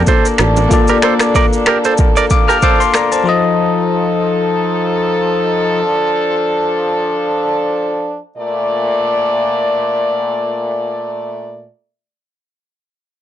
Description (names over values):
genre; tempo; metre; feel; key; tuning
afrobeats; 94 BPM; 4/4; swing 55% on 16ths; Bb major; A4 = 441 Hz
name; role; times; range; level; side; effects
bell-like tine electric piano; accompaniment; 0.0-5.8 s; F3 to F6; -15 LUFS; left 6 dB; none
muted French horn section; sustained chords; 0.0-11.7 s; Bb2 to D5; -16 LUFS; equal; sidechain pumping
modern bright fingered electric bass; bass; 0.0-0.7 s; A1; -14 LUFS; equal; none
direct-recorded clean electric guitar; riff; 0.1-2.8 s; G4 to D5; -17 LUFS; right 5 dB; ping-pong delay
afro-pop drum kit; drums; 0.1-3.3 s; finger snaps, kick drum, rim click, shaker; -14 LUFS; equal; none
bongos; percussion; 0.1-0.7 s; none; -22 LUFS; right 9 dB; none
room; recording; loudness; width
light reverb; blown-out, overdriven recording, overdrive, nothing above 10.4 kHz; -12 LUFS; side -11 dB against mid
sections
0.0-8.4 A section; 8.4-10.9 B section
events
none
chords
0.0 Bbmaj7; 3.3 F7; 8.4 Bbmaj7